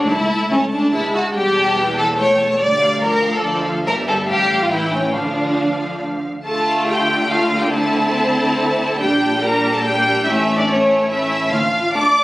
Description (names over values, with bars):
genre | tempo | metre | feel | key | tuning
quick classical-period movement for string orchestra | 143 BPM | 3/4 | straight | D minor | A4 = 437 Hz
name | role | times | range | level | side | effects
rich studio violin section | melody | 0.0-12.2 s | C#5 to D6 | -20 LUFS | equal | none
rich studio violin section | second line | 0.0-12.0 s | G3 to D5 | -18 LUFS | equal | none
rich studio viola section | accompaniment | 0.0-12.2 s | E3 to D5 | -24 LUFS | equal | none
rich studio cello section | bass | 0.0-11.8 s | C#2 to D3 | -26 LUFS | right 1 dB | none
clear studio double bass section | bass | 0.1-11.8 s | E1 to D2 | -28 LUFS | equal | none
room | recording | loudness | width
moderate recital hall reverb, RT60 1.4 s | recorded on a phone in the room, club reverb | -15 LUFS | side -18 dB against mid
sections
0.0-6.4 A section; 6.4-12.2 B section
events
none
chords
0.1 A/C#; 1.3 A5/E; 2.6 Dm; 3.9 Em/G; 4.3 Fadd9/A; 4.7 A7; 5.1 Dm; 7.7 Am/D; 9.0 Gm/Bb; 10.3 A; 11.5 Dm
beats
| 0.09 0.51 0.93 | 1.34 1.76 2.18 | 2.60 3.02 3.44 | 3.86 4.28 4.70 | 5.14 5.58 6.01 | 6.45 6.88 7.30 | 7.73 8.15 8.58 | 9.00 9.42 9.84 | 10.26 10.68 11.10 | 11.52 11.94